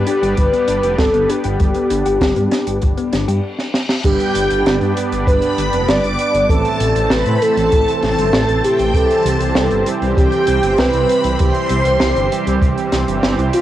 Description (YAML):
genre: synthwave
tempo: 98 BPM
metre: 4/4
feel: straight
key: unclear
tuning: A4 = 440 Hz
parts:
  - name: analog string pad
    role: sustained chords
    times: 0.0-13.6 s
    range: C3 to D4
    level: -24 LUFS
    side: left 2 dB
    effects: ensemble chorus, sidechain pumping, cassette tape
  - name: thumb-piano-like synth pluck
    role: arpeggios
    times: 0.0-3.4 s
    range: G3 to G4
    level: -23 LUFS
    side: left 8 dB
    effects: chorus, cassette tape, tape echo
  - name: dark detuned saw bass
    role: bass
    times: 0.0-13.5 s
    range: F1 to A2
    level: -20 LUFS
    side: equal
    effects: none
  - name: warm velvety synth lead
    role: melody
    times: 0.1-13.6 s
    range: F4 to D5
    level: -18 LUFS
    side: equal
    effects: chorus, cassette tape, tape echo
  - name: open jazz drum kit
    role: drums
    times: 0.1-13.6 s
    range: crash cymbal, hi-hat, snare drum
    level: -21 LUFS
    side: equal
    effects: cassette tape
  - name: kick drum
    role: drums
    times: 0.4-12.7 s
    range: none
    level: -17 LUFS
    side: equal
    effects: cassette tape
  - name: reverse cymbal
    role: sound effects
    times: 3.3-4.0 s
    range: none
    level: -29 LUFS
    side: left 3 dB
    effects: none
  - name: string machine, violins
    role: second line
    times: 4.0-13.6 s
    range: F5 to D6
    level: -24 LUFS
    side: equal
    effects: ensemble chorus, cassette tape, tape echo
  - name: mellow synth brass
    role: stabs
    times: 4.0-13.6 s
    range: G2 to B4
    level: -21 LUFS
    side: right 7 dB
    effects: chorus, cassette tape
room: moderate studio reverb, RT60 0.6 s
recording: home recording on cassette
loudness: -13 LUFS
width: side -12 dB against mid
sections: 0.0-4.0 A section; 4.0-13.6 B section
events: reverse cymbal 3.3-4.0; stop 3.4-4.0; drum fill 3.6-4.0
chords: 0.0 G; 6.5 Am; 8.9 C